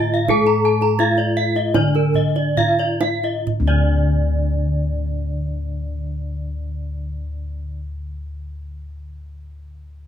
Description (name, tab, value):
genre	Balinese gamelan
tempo	63-92 BPM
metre	4/4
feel	straight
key	D pelog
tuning	A4 = 441 Hz
part	gamelan-type bronze metallophone	melody	0.0-7.8 s	D4 to A4-45c	-23 LUFS	left 3 dB	none
part	gamelan-type bronze metallophone	accompaniment	0.0-7.8 s	D3 to A3-45c	-30 LUFS	right 2 dB	none
part	gamelan-type bronze metallophone	arpeggios	0.0-7.8 s	Bb4-40c to Bb5-40c	-26 LUFS	right 4 dB	none
part	gamelan-type bossed gongs	bass	0.0-7.7 s	D2 to A4-45c	-22 LUFS	left 1 dB	none
part	gamelan-type bronze metallophone	arpeggios	0.1-7.8 s	D5 to A5-45c	-24 LUFS	left 1 dB	none
part	kendang	percussion	0.3-3.9 s	none	-24 LUFS	right 4 dB	none
room	moderate small room reverb, RT60 0.5 s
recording	band playing live in one room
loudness	-17 LUFS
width	side -9 dB against mid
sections	0.0-3.5 A section; 3.5-10.1 B section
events	slowing down 0.0-3.5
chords	none